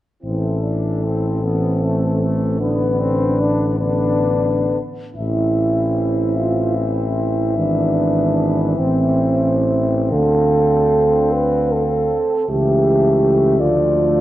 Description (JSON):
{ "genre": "classical, hymn-like piece for brass band", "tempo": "42-55 BPM (dotted quarters)", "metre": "6/8", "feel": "rubato", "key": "A minor", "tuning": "A4 = 440 Hz", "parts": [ { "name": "mellow flugelhorn", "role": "melody", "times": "0.2-14.2 s", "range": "A4 to F5", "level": "-24 LUFS", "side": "left 5 dB", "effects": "none" }, { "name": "dark French horn section", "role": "second line", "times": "0.2-14.2 s", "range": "B3 to B4", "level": "-19 LUFS", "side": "right 3 dB", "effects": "none" }, { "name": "bright trombone section", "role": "accompaniment", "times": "0.2-14.2 s", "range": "A3 to D4", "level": "-26 LUFS", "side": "left 3 dB", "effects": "none" }, { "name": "mellow euphonium", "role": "accompaniment", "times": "0.2-14.2 s", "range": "D3 to F3", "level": "-25 LUFS", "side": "right 1 dB", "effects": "none" }, { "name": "mellow tuba", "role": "bass", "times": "0.2-14.2 s", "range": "G#1 to D2", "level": "-20 LUFS", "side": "left 1 dB", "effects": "none" } ], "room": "moderate concert hall reverb, RT60 2.1 s", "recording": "worn, warbling old tape, cassette tape, warbly pitch drift", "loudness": "-15 LUFS", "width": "side -14 dB against mid", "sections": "0.2-5.2 A section; 5.2-14.2 B section", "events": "none", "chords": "0.2 Am; 2.6 Asus24; 5.2 Am; 7.6 E7/G#; 8.8 Am; 10.1 Dm7; 12.5 A7/C#; 13.6 Dm", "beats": "| 0.24 1.44 | 2.59 3.80 | 5.16 6.38 | 7.57 8.78 | 10.12 11.33 | 12.48 13.59" }